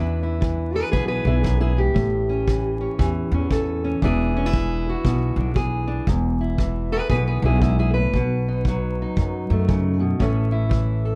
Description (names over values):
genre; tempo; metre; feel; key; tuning
acoustic country blues, solo or duo; 116 BPM; 4/4; swing 63% on 8ths; E mixolydian; A4 = 440 Hz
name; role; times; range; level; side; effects
fingerpicked steel-string acoustic guitar; melody; 0.0-11.2 s; E2 to B4; -26 LUFS; equal; none
upright bass; bass; 0.0-11.1 s; E1 to F#2; -25 LUFS; equal; none
kick drum; drums; 0.4-10.9 s; none; -26 LUFS; equal; none
room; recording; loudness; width
little or no reverb; vinyl crackle; -22 LUFS; mono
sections
0.0-11.2 A section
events
none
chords
0.0 E7; 2.0 A7; 4.0 E7; 8.1 B7; 10.2 A